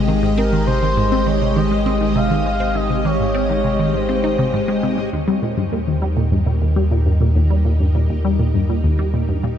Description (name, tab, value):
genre	ambient, sequencer-driven space music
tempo	101 BPM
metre	4/4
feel	straight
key	unclear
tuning	A4 = 440 Hz
part	string machine, full ensemble	sustained chords	0.0-9.6 s	Ab3 to Eb5	-22 LUFS	equal	ensemble chorus, shimmer reverb
part	resonant blip pluck	riff	0.0-9.5 s	Eb2 to Eb4	-20 LUFS	equal	chorus, phaser, vintage 12-bit sampler grit, ping-pong delay
part	warm sub bass	bass	0.0-9.6 s	Ab1 to Eb2	-20 LUFS	equal	none
part	bubbling stepped-filter texture	texture	0.0-5.1 s	Ab3	-34 LUFS	equal	none
part	expressive synth lead	melody	0.4-4.8 s	Bb4 to F5	-24 LUFS	left 1 dB	chorus, shimmer reverb, ping-pong delay
room	moderate huge ambient reverb, RT60 7.9 s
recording	dark, warm production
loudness	-15 LUFS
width	side -9 dB against mid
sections	0.0-5.1 A section; 5.1-9.6 B section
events	none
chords	0.0 Abmaj7; 5.1 Eb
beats	| 0.37 0.97 1.56 2.16 | 2.75 3.35 3.94 4.53 | 5.13 5.72 6.32 6.91 | 7.50 8.10 8.69 9.29